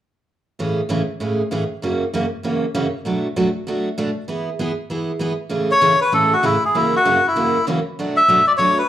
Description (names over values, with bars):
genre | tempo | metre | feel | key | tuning
country | 195 BPM | 4/4 | swing 62% on 8ths | A major | A4 = 438 Hz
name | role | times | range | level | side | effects
picked steel-string acoustic guitar | accompaniment | 0.6-8.8 s | F#2 to G#4 | -20 LUFS | right 2 dB | plate reverb
melodica | melody | 5.7-8.9 s | E4 to E5 | -14 LUFS | left 1 dB | plate reverb, slapback echo
room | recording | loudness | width
moderate club reverb, RT60 0.5 s | live gig heard through the venue's PA, club reverb | -17 LUFS | side -12 dB against mid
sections
0.6-5.5 A section; 5.5-8.9 B section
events
none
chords
0.6 Amaj7; 1.8 F#7; 3.1 Bm7; 4.3 E; 5.5 Amaj7; 6.8 F#7; 8.0 Bm7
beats
| 0.59 0.90 1.21 1.52 | 1.82 2.13 2.44 2.75 | 3.06 3.36 3.67 3.98 | 4.29 4.59 4.90 5.21 | 5.52 5.83 6.13 6.44 | 6.75 7.06 7.37 7.67 | 7.98 8.29 8.60